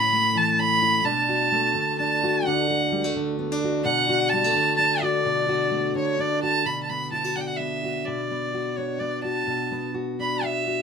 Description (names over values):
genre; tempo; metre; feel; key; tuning
folk; 128 BPM; 3/4; straight; B minor; A4 = 442 Hz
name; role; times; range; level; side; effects
warm fiddle; melody; 0.0-10.8 s; C#5 to B5; -22 LUFS; right 1 dB; none
fingerpicked steel-string acoustic guitar; accompaniment; 0.0-10.8 s; D2 to F#4; -26 LUFS; left 1 dB; none
room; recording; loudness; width
moderate studio ambience, RT60 0.5 s; minimal, uncompressed stereo recording; -21 LUFS; side -6 dB against mid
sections
0.0-6.7 A section; 6.7-10.8 B section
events
none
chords
0.0 A; 1.1 Bm7; 2.4 D; 3.8 Bm7; 6.7 Bm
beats
0.12 0.58 | 1.05 1.52 1.98 | 2.45 2.91 3.38 | 3.85 4.31 4.78 | 5.25 5.71 6.18 | 6.65 7.12 7.59 | 8.06 8.54 9.01 | 9.48 9.95 10.43